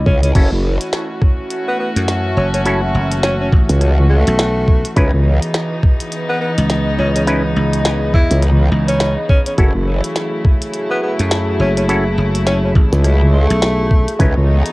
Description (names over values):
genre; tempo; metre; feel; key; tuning
glitch hop; 104 BPM; 4/4; swing 59% on 16ths; F# dorian; A4 = 440 Hz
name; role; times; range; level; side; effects
dry thumbed slap bass; bass; 0.0-14.1 s; F#1 to F#2; -17 LUFS; equal; none
warbly tape-like pad; texture; 0.0-14.7 s; E3 to B5; -25 LUFS; equal; chorus, built-in reverb, sidechain pumping, cassette tape
warm tenor saxophone; melody; 0.1-14.2 s; A3 to E4; -22 LUFS; equal; cassette tape, analog delay
growl bass; bass; 0.1-14.6 s; F#1 to C#2; -12 LUFS; equal; chorus
electronic kick drum; drums; 0.1-14.3 s; none; -12 LUFS; equal; cassette tape
glitchy drum kit; drums; 0.2-14.7 s; crash cymbal, hi-hat, rim click, snare drum; -22 LUFS; equal; cassette tape
auto-wah clav; stabs; 0.3-14.3 s; C#4 to B4; -23 LUFS; equal; sidechain pumping, cassette tape, analog delay
rich chamber string section; sustained chords; 0.4-14.7 s; C#3 to F#4; -22 LUFS; equal; sidechain pumping, cassette tape
room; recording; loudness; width
little or no reverb; home recording on cassette; -13 LUFS; side -21 dB against mid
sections
0.0-14.7 A section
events
none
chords
0.3 F#m7; 5.0 C#m9; 9.6 F#m7; 14.2 C#m9